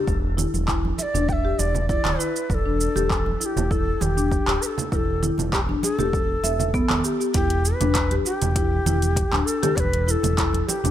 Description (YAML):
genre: organic downtempo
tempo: 99 BPM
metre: 4/4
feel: straight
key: E minor pentatonic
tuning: A4 = 440 Hz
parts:
  - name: marimba with medium mallets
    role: arpeggios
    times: 0.0-10.9 s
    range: B3 to E5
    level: -26 LUFS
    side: left 3 dB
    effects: digital delay
  - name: smooth gliding synth bass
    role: bass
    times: 0.1-10.9 s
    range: D1 to E1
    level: -24 LUFS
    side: equal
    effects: none
  - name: deep house drum kit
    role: drums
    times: 0.1-10.9 s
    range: congas, handclaps, hi-hat, shaker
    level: -27 LUFS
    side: right 2 dB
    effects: overdrive
  - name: electronic kick drum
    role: drums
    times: 0.1-10.5 s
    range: none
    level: -27 LUFS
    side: equal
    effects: overdrive
  - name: congas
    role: percussion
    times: 0.5-10.9 s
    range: none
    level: -31 LUFS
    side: right 5 dB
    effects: none
  - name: mellow Native American-style cedar flute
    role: melody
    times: 1.0-10.9 s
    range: G4 to G5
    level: -27 LUFS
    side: equal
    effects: digital delay
room: light reverb, small room ambience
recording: none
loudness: -20 LUFS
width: side -11 dB against mid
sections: 0.0-7.3 A section; 7.3-10.9 B section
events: none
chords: 0.0 Em7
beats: | 0.07 0.68 1.29 1.89 | 2.50 3.10 3.71 4.32 | 4.92 5.53 6.13 6.74 | 7.35 7.95 8.56 9.16 | 9.77 10.38